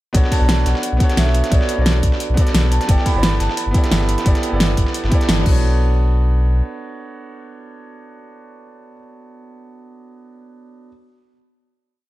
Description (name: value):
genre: liquid drum and bass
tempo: 175 BPM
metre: 4/4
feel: swing 54% on 16ths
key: B minor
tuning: A4 = 444 Hz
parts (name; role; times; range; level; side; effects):
- vibraphone with medium mallets; melody; 0.1-5.2 s; D5 to B5; -26 LUFS; right 3 dB; ping-pong delay
- bright concert grand piano; accompaniment; 0.1-10.9 s; B3 to D5; -24 LUFS; right 2 dB; vintage 12-bit sampler grit, ping-pong delay
- sub bass with octave; bass; 0.1-6.6 s; G1 to B1; -17 LUFS; equal; none
- dusty soul sampler-style drum kit; drums; 0.1-5.5 s; hi-hat, snare drum; -28 LUFS; equal; overdrive, high-pass filter on hats, high-pass filter on snare, high-pass filter on room
- electronic kick drum; drums; 0.1-5.5 s; none; -16 LUFS; equal; none
- pop drum kit; drums; 0.1-5.5 s; crash cymbal, hi-hat, snare drum; -21 LUFS; equal; none
room: light reverb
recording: dark, warm production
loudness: -14 LUFS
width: side -16 dB against mid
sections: 0.1-5.6 drop; 5.6-8.4 final hit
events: drop 0.1-5.6; band accent 5.3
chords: 0.1 Bm9; 2.9 G69; 5.5 Bm9